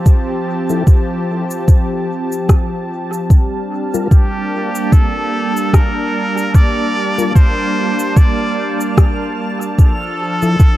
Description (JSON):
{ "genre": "ambient dub", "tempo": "74 BPM", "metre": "4/4", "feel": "swing 57% on 16ths", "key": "G minor", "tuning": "A4 = 439 Hz", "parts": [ { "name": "warm analog pad", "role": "sustained chords", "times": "0.0-10.8 s", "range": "F3 to A5", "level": "-19 LUFS", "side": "right 1 dB", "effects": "chorus, tremolo" }, { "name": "electronic cabasa and rim click", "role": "drums", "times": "0.1-10.8 s", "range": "none", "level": "-25 LUFS", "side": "left 2 dB", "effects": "small room ambience, dub echo" }, { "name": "electronic kick drum", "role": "drums", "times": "0.1-10.8 s", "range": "none", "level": "-9 LUFS", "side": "equal", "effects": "small room ambience" }, { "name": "mellow tonewheel organ", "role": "stabs", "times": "0.7-10.6 s", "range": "F3 to Bb4", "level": "-22 LUFS", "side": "left 4 dB", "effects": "chorus vibrato, fast rotary speaker, dub echo" }, { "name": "backwards swelling texture", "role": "texture", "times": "3.6-10.8 s", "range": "F6", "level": "-34 LUFS", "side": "right 4 dB", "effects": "built-in reverb" }, { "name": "trumpet with straight mute", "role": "melody", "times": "4.1-10.8 s", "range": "G4 to D5", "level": "-20 LUFS", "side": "equal", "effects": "dub echo" } ], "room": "digital ambience", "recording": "echo-heavy mix", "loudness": "-12 LUFS", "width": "side -15 dB against mid", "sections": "0.0-10.8 A section", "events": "none", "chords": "0.0 F; 3.3 Gm7; 9.8 Fmaj7" }